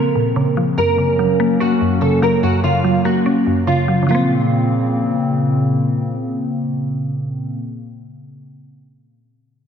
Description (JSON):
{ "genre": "hip hop", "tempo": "145 BPM", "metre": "4/4", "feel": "half-time", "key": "Bb minor", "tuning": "A4 = 439 Hz", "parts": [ { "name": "nylon-string guitar", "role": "melody", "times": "0.0-5.3 s", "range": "F4 to Bb4", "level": "-20 LUFS", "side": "right 2 dB", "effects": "analog chorus, low-pass filter, diffuse ambient delay" }, { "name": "mallet-like synth pluck", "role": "accompaniment", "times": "0.0-7.6 s", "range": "Gb2 to Db4", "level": "-18 LUFS", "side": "equal", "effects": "chorus, low-pass filter" }, { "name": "hollow soft pad", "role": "sustained chords", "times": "0.0-7.6 s", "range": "Bb2 to Db4", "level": "-19 LUFS", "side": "left 1 dB", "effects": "chorus" } ], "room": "wet church reverb, RT60 2.9 s", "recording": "dreamy mix soaked in reverb", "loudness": "-15 LUFS", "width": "side -7 dB against mid", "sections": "0.0-4.1 A section; 4.1-7.4 B section", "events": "none", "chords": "0.0 Bbmadd9; 0.8 Gb; 4.1 Bbmadd9" }